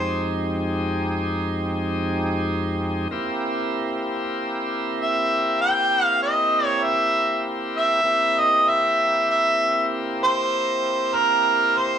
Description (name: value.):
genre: blues.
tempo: 97 BPM.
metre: 4/4.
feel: swing 55% on 16ths.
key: unclear.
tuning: A4 = 442 Hz.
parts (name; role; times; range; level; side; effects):
mellow harmonica; melody; 0.0-0.3, 5.0-12.0 s; Bb4 to G5; -19 LUFS; right 1 dB; overdrive, slapback echo.
bright tonewheel organ; accompaniment; 0.0-12.0 s; F2 to G4; -25 LUFS; equal; overdrive, slow rotary speaker, slapback echo.
room: light reverb.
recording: live gig heard through the venue's PA, club reverb.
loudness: -19 LUFS.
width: side -8 dB against mid.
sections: 0.0-12.0 A section.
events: none.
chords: 0.0 Fm9; 3.1 C7.